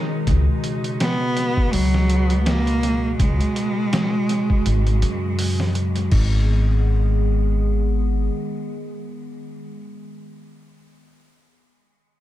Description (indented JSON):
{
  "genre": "trip hop",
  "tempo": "82 BPM",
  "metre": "4/4",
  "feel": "swing 57% on 16ths",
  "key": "G# minor",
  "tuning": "A4 = 440 Hz",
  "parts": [
    { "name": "warbly tape-like pad", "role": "sustained chords", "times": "0.0-9.8 s", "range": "B2 to A#4", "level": "-28 LUFS", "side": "equal", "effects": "chorus, built-in reverb" },
    { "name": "bowed-like drone", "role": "texture", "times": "0.0-6.1 s", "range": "G#3", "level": "-36 LUFS", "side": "right 1 dB", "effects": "none" },
    { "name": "upright bass", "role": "bass", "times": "0.3-8.3 s", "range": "G#1 to F#2", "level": "-19 LUFS", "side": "equal", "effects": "none" },
    { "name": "trip hop sampler-style drum kit", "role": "drums", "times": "0.3-6.3 s", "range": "crash cymbal, hi-hat, kick drum, snare drum", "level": "-24 LUFS", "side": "equal", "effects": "tape echo" },
    { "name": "clear cello", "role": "melody", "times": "1.0-5.3 s", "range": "F#3 to B3", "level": "-24 LUFS", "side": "right 1 dB", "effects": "dub echo" }
  ],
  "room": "little or no reverb",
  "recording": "echo-heavy mix",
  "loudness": "-18 LUFS",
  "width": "side -14 dB against mid",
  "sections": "0.0-6.1 A section; 6.1-9.0 B section",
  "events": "none",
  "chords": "0.3 C#7sus4; 6.1 G#m"
}